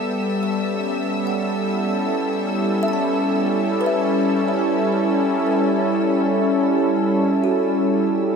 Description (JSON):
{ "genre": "ambient", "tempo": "54 BPM", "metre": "4/4", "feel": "straight", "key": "unclear", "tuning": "A4 = 441 Hz", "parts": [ { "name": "warm analog pad", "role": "sustained chords", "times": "0.0-8.4 s", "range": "G3 to A4", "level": "-19 LUFS", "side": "equal", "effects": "chorus" }, { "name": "organ-like drone", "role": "drone", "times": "0.0-8.4 s", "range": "G3 to A4", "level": "-28 LUFS", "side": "equal", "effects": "ensemble chorus, built-in reverb" }, { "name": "rich studio violin section", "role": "texture", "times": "0.0-8.4 s", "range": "E5 to E6", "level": "-33 LUFS", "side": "left 2 dB", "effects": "none" }, { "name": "kalimba", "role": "arpeggios", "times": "0.4-8.4 s", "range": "F#4 to A5", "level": "-28 LUFS", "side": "equal", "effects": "ping-pong delay" } ], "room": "wet huge ambient reverb, RT60 8.1 s", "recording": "dreamy mix soaked in reverb", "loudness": "-18 LUFS", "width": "side -6 dB against mid", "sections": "0.0-8.4 A section", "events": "fade-in on synth drone 0.0-8.4; fade-out on violin section 0.0-8.4", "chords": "0.1 A7" }